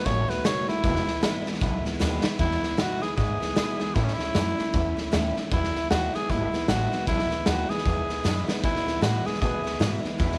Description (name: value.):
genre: rockabilly.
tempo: 154 BPM.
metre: 4/4.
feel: swing 60% on 8ths.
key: E major.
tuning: A4 = 440 Hz.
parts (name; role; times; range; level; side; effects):
growling tenor saxophone; melody; 0.0-10.4 s; C#4 to C#5; -31 LUFS; equal; none.
picked steel-string acoustic guitar; accompaniment; 0.0-10.4 s; E2 to F#4; -34 LUFS; equal; none.
upright bass; bass; 0.1-10.4 s; E1 to B2; -32 LUFS; equal; none.
raw garage drum kit; drums; 0.1-10.4 s; hi-hat, kick drum, snare drum; -30 LUFS; equal; none.
room: light reverb, small room reverb.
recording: none.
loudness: -26 LUFS.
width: mono.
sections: 0.0-2.4 A section; 2.4-10.4 B section.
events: tenor saxophone solo 0.0-2.4; drum fill 2.0-2.4, 8.2-8.6.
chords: 0.0 B7; 0.8 E; 4.0 A; 5.5 E.